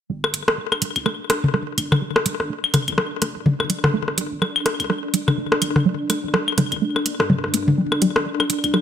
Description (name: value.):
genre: minimal techno.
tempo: 125 BPM.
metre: 4/4.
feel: swing 59% on 16ths.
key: unclear.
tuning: A4 = 440 Hz.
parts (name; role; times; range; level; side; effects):
resonant blip pluck; riff; 0.1-8.8 s; G3 to Bb3; -23 LUFS; right 2 dB; phaser, dub echo.
punchy sub bass; bass; 0.1-8.7 s; D1 to G2; -33 LUFS; right 2 dB; high-pass filter.
swarming drone; texture; 0.7-8.8 s; D4; -28 LUFS; equal; built-in reverb.
booming analog drum machine; percussion; 0.2-8.8 s; claves, rim click, toms; -20 LUFS; left 2 dB; ping-pong delay.
electronic hi-hat; drums; 0.3-8.7 s; none; -22 LUFS; right 4 dB; none.
room: moderate studio reverb, RT60 0.6 s.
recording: none.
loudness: -18 LUFS.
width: side -9 dB against mid.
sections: 0.1-8.8 A section.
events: none.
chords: 0.1 G5.